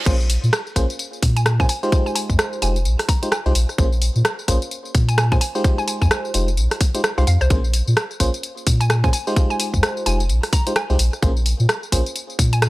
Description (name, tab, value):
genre	UK garage, two-step garage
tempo	129 BPM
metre	4/4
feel	swing 60% on 16ths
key	Bb minor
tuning	A4 = 440 Hz
part	FM electric piano	stabs	0.1-12.0 s	Ab3 to C5	-26 LUFS	equal	chorus, tape echo
part	soft dub sub bass	bass	0.1-12.7 s	F1 to Bb2	-18 LUFS	equal	none
part	electronic kick drum	drums	0.1-12.5 s	none	-18 LUFS	equal	small room reverb
part	garage drum kit	drums	0.1-12.7 s	crash cymbal, hi-hat, rim click, tambourine	-23 LUFS	equal	small room reverb
part	hollow square pluck	melody	1.4-12.7 s	C5 to Bb5	-28 LUFS	equal	chorus, tape echo
room	little or no reverb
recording	dry, gritty hardware recording, transformer saturation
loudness	-17 LUFS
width	side -19 dB against mid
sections	0.0-12.7 A section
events	none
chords	0.1 Bbm9; 1.7 Fm9; 3.8 Bbm9; 5.4 Fm9; 7.5 Bbm9; 9.1 Fm9; 11.2 Bbm9